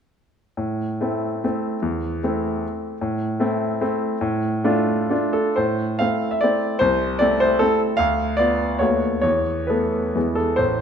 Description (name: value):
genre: classical, romantic triple-time dance for piano with dotted rhythms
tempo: 120-163 BPM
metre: 3/4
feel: rubato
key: A minor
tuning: A4 = 440 Hz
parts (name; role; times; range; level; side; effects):
- bright concert grand piano; solo; 0.6-10.8 s; A1 to F5; -19 LUFS; equal; none
room: wet recital hall reverb, RT60 1.6 s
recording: minimal, uncompressed stereo recording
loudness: -19 LUFS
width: side -7 dB against mid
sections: 0.6-5.6 A section; 5.6-10.8 B section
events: none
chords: 0.6 Am; 4.2 Dm/A; 5.6 Am; 6.8 Am/C; 8.0 Bdim/D; 8.8 B7/D#; 9.2 Esus4; 10.2 E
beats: | 0.57 1.00 1.43 | 1.82 2.22 2.63 | 3.00 3.40 3.81 | 4.21 4.64 5.11 | 5.58 6.01 6.43 | 6.81 7.21 7.61 | 7.99 8.39 8.81 | 9.23 9.69 10.15 | 10.59